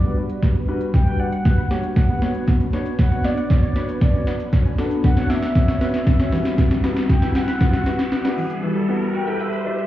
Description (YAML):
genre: dance-pop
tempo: 117 BPM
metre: 4/4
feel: straight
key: unclear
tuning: A4 = 441 Hz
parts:
  - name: mellow horn-like synth lead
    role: melody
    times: 0.0-9.9 s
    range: D5 to G5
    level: -29 LUFS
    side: equal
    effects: chorus, tape echo
  - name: warm grand piano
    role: accompaniment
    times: 0.0-9.8 s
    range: G3 to D5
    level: -27 LUFS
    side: left 3 dB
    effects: sidechain pumping
  - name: warm analog pad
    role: sustained chords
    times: 0.0-9.9 s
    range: G3 to E5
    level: -28 LUFS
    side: equal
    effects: chorus, sidechain pumping
  - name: wide unison pluck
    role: arpeggios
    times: 0.0-9.9 s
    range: E3 to B5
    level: -30 LUFS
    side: right 1 dB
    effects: sidechain pumping, tape echo
  - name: smooth R&B drum kit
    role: drums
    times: 0.0-8.6 s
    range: hi-hat, kick drum, shaker, snare drum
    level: -19 LUFS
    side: equal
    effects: overdrive
  - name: egg shaker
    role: percussion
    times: 2.5-8.6 s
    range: none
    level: barely audible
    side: none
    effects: none
  - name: riser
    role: sound effects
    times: 3.8-9.7 s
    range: none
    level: -32 LUFS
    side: right 1 dB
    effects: none
room: light reverb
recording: heard muffled through a wall, club reverb, EQ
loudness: -17 LUFS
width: side -14 dB against mid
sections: 0.0-9.9 A section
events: build-up 0.0-9.9; drum fill 0.0-8.6; riser 3.8-9.9; break 8.6-9.9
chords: 0.0 Gmaj7; 2.2 Bmadd9; 6.3 Emadd9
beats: | 0.43 0.94 1.45 1.97 | 2.48 2.99 3.50 4.02 | 4.53 5.04 5.56 6.07 | 6.58 7.09 7.61 8.12 | 8.63 9.14 9.66